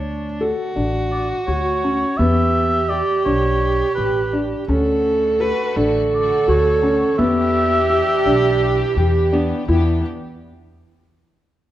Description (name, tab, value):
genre	contemporary instrumental, chamber music in an uneven meter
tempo	168 BPM (eighths)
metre	7/8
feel	straight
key	E dorian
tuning	A4 = 440 Hz
part	dark viola	second line	0.0-10.0 s	B3 to B4	-20 LUFS	right 2 dB	none
part	felt-muted upright piano	arpeggios	0.0-10.0 s	B3 to C#5	-22 LUFS	left 2 dB	none
part	upright bass	bass	0.0-10.0 s	A1 to E2	-22 LUFS	equal	none
part	warm oboe	melody	1.1-8.9 s	B4 to E5	-22 LUFS	equal	none
part	warm studio string section	sustained chords	4.7-10.0 s	D3 to G4	-29 LUFS	left 3 dB	none
room	moderate recital hall reverb, RT60 1.6 s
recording	worn, warbling old tape, cassette tape, warbly pitch drift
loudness	-16 LUFS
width	side -13 dB against mid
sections	0.0-9.7 A section; 9.7-11.7 B section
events	none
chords	0.0 Dmaj7; 2.2 Em7; 4.7 Dmaj7; 7.2 Em7